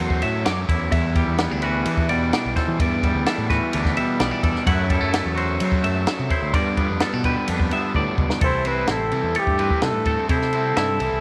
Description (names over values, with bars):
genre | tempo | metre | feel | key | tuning
math rock and midwest emo | 128 BPM | 4/4 | straight | unclear | A4 = 440 Hz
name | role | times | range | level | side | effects
twangy electric guitar | accompaniment | 0.0-11.2 s | E2 to A4 | -28 LUFS | equal | none
twelve-string electric guitar | arpeggios | 0.0-11.2 s | G4 to D6 | -30 LUFS | equal | none
overdriven electric guitar | riff | 0.0-11.2 s | F#2 to F#4 | -31 LUFS | equal | none
growling fingered electric bass | bass | 0.0-11.2 s | A1 to F#3 | -28 LUFS | equal | overdrive
compact cocktail drum kit | drums | 0.1-11.1 s | kick drum, ride cymbal, snare drum | -27 LUFS | equal | none
breathy trumpet | melody | 8.4-11.2 s | G4 to C5 | -25 LUFS | equal | none
room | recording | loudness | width
light reverb, small room ambience | none | -21 LUFS | mono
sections
0.0-8.4 A section; 8.4-11.2 B section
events
drum fill 8.0-8.4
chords
0.0 F#m7b5; 0.9 Em9; 4.7 F#m7b5; 6.5 G7; 8.4 C6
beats
0.45 | 0.92 1.39 1.86 2.33 | 2.79 3.26 3.73 4.20 | 4.67 5.14 5.61 6.07 | 6.54 7.01 7.48 7.95 | 8.42 8.89 9.36 9.83 | 10.30 10.77